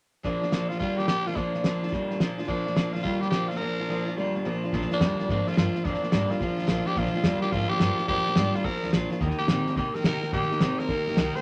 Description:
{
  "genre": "rockabilly",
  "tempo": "214 BPM",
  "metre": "4/4",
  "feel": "swing 64% on 8ths",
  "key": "Bb major",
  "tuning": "A4 = 435 Hz",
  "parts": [
    { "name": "growling tenor saxophone", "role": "melody", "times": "0.2-11.4 s", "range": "D4 to C5", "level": "-32 LUFS", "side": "equal", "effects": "none" },
    { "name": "picked steel-string acoustic guitar", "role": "accompaniment", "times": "0.2-11.4 s", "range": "Bb2 to G4", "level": "-35 LUFS", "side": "equal", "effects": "none" },
    { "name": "electric guitar through a small old amp", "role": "riff", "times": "0.2-11.4 s", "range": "Bb2 to C4", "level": "-32 LUFS", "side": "equal", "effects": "none" },
    { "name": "cloth-damped thuddy drum kit", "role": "drums", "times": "0.2-11.4 s", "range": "hi-hat, kick drum, snare drum", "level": "-30 LUFS", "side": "equal", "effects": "none" },
    { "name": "upright bass", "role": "bass", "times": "4.7-11.4 s", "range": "Bb1 to C3", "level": "-35 LUFS", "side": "equal", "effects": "none" }
  ],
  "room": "light reverb",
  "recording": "none",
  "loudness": "-26 LUFS",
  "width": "mono",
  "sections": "0.2-4.7 A section; 4.7-11.4 B section",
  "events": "break 3.6-4.7",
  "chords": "0.2 Bb; 9.2 Eb"
}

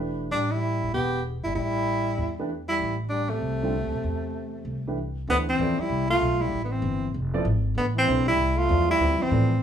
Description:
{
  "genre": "modal jazz",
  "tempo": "193 BPM",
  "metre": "4/4",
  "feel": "swing 64% on 8ths",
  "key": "A minor, D dorian from 5.3 s",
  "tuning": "A4 = 440 Hz",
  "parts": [
    { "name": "warm upright piano", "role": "accompaniment", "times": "0.0-0.3, 2.4-9.5 s", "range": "D3 to E5", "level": "-30 LUFS", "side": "right 4 dB", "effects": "none" },
    { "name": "upright bass", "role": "bass", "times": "0.0-9.6 s", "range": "E1 to A2", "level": "-28 LUFS", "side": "equal", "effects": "none" },
    { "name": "breathy tenor saxophone", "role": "melody", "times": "0.3-9.6 s", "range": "A3 to G4", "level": "-25 LUFS", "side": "right 1 dB", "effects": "none" },
    { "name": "clear trombone", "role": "second line", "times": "0.3-9.6 s", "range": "C3 to B3", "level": "-32 LUFS", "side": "left 6 dB", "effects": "none" }
  ],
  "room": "light reverb",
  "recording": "none",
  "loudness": "-23 LUFS",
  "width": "side -9 dB against mid",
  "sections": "0.0-5.3 A section; 5.3-9.6 B section",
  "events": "none",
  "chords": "0.0 Am11; 5.3 Dm11"
}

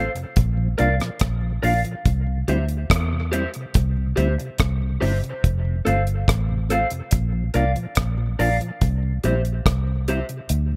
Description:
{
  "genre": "dub reggae",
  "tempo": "71 BPM",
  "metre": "4/4",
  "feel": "straight",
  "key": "unclear",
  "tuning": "A4 = 439 Hz",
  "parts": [
    { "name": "electric guitar through a small old amp", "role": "accompaniment", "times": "0.0-10.3 s", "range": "G4 to F5", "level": "-29 LUFS", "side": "equal", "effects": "lush chorus, dub echo" },
    { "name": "mellow tonewheel organ", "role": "accompaniment", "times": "0.0-10.8 s", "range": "F2 to F4", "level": "-32 LUFS", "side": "equal", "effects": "chorus vibrato, stopped rotary speaker" },
    { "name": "vintage muted fingered electric bass", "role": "bass", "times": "0.0-10.8 s", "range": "F1 to E2", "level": "-24 LUFS", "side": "equal", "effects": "none" },
    { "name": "deep reggae drum kit", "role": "drums", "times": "0.2-10.7 s", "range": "hi-hat, kick drum, rim click", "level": "-25 LUFS", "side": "equal", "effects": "none" }
  ],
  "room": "light reverb, small room ambience",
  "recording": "none",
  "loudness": "-22 LUFS",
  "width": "mono",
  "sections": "0.0-10.8 A section",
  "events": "kick muted 10.5",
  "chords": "0.4 Bb; 2.1 C; 5.4 F; 7.1 Bb; 8.8 C"
}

